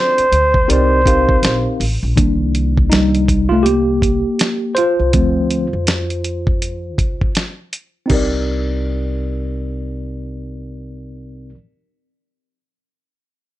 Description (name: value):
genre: hip hop, jazz-hop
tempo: 81 BPM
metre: 4/4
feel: swing 62% on 16ths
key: C dorian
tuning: A4 = 438 Hz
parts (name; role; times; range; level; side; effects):
- breathy flugelhorn; melody; 0.0-1.8 s; C5; -14 LUFS; right 1 dB; plate reverb
- tine electric piano; accompaniment; 0.0-11.6 s; Eb3 to F5; -18 LUFS; equal; overdrive, fast stereo tremolo
- upright bass; bass; 0.2-11.5 s; A1 to F2; -20 LUFS; equal; none
- dusty soul sampler-style drum kit; drums; 0.2-8.3 s; crash cymbal, hi-hat, kick drum, snare drum; -18 LUFS; equal; none
room: moderate studio reverb, RT60 0.6 s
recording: nothing above 10.6 kHz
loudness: -14 LUFS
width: side -15 dB against mid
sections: 0.0-2.2 A section; 2.2-8.1 B section; 8.1-11.1 C section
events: tine electric piano solo 2.2-8.1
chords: 0.0 Dm7; 0.7 Cm9; 5.1 Dm7; 8.1 Cm9